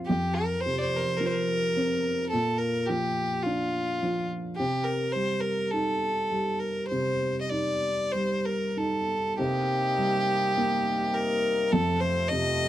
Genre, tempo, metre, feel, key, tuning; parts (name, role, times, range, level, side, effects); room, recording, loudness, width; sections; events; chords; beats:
celtic folk, Celtic slow air; 47-54 BPM; 4/4; rubato; C dorian; A4 = 440 Hz
dark upright piano; accompaniment; 0.0-12.7 s; F2 to Eb4; -29 LUFS; right 1 dB
clear fiddle; melody; 0.1-12.7 s; F4 to Eb5; -27 LUFS; equal
hand-pumped harmonium; sustained chords; 9.4-12.7 s; F2 to Eb4; -35 LUFS; left 2 dB
studio reverb; dry, close 1970s-style studio recording; -25 LUFS; side -13 dB against mid
0.0-9.4 A section; 9.4-12.7 B section
0.1 F5; 2.3 Bb; 4.6 Cm; 9.4 Cm7; 11.7 F
| 0.10 1.21 2.33 3.46 | 4.59 5.73 6.90 8.14 | 9.38 10.56 11.73